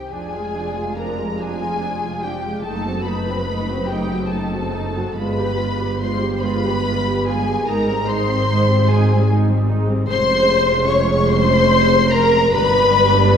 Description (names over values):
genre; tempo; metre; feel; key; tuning
classical, slow romantic movement for string orchestra; 48 BPM (dotted quarters); 6/8; uneven beats, rubato; unclear; A4 = 440 Hz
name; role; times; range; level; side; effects
muted studio violin section; melody; 0.0-13.4 s; G5 to Db6; -23 LUFS; left 5 dB; none
muted studio violin section; second line; 0.0-13.4 s; G4 to Db5; -21 LUFS; left 1 dB; none
muted studio viola section; accompaniment; 0.1-13.4 s; F3 to G4; -24 LUFS; right 1 dB; none
muted studio cello section; bass; 0.1-13.4 s; F2 to Ab2; -24 LUFS; right 1 dB; none
muted studio double bass section; bass; 0.1-13.4 s; F1 to Ab1; -23 LUFS; right 2 dB; none
room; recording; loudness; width
wet scoring stage reverb, RT60 1.9 s; heard from further back in the room; -16 LUFS; side -7 dB against mid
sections
0.1-13.4 A section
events
none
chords
0.1 Ddim/F; 2.6 F#dim7; 5.2 G7b9; 7.7 Abmaj7; 10.1 Db/F; 12.5 G